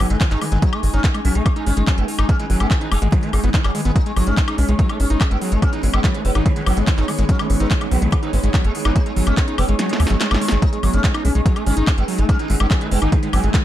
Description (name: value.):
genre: psychedelic trance.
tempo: 144 BPM.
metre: 4/4.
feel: straight.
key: G# phrygian.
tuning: A4 = 440 Hz.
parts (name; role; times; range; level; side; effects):
sitar; melody; 0.0-13.6 s; D#3 to D#4; -27 LUFS; left 1 dB; phaser, sidechain pumping, tape echo.
evolving wavetable pad; sustained chords; 0.0-13.6 s; G#3 to D#4; -28 LUFS; right 1 dB; ensemble chorus, built-in reverb, phaser, vintage 12-bit sampler grit, sidechain pumping.
overdriven acid bass; riff; 0.0-13.6 s; F#3 to D#4; -26 LUFS; equal; distortion, auto-pan, sidechain pumping, digital delay.
tight sequencer bass; bass; 0.0-13.5 s; F#1 to D#2; -18 LUFS; equal; none.
techno drum kit; drums; 0.0-13.6 s; handclaps, hi-hat, snare drum, woodblock; -26 LUFS; left 2 dB; studio reverb.
airy breathy pad; texture; 0.0-13.6 s; D#4 to G#5; -29 LUFS; right 2 dB; chorus, sidechain pumping.
electronic kick drum; drums; 0.2-13.6 s; none; -17 LUFS; equal; studio reverb.
metallic wobble bass; second line; 11.1-13.2 s; D#3 to B3; -43 LUFS; left 2 dB; none.
room: digital ambience.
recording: dark, warm production.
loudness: -16 LUFS.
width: side -13 dB against mid.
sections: 0.0-13.6 A section.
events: kick drops out 9.8-10.6; drum fill 9.8-10.6.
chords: 0.0 G#5.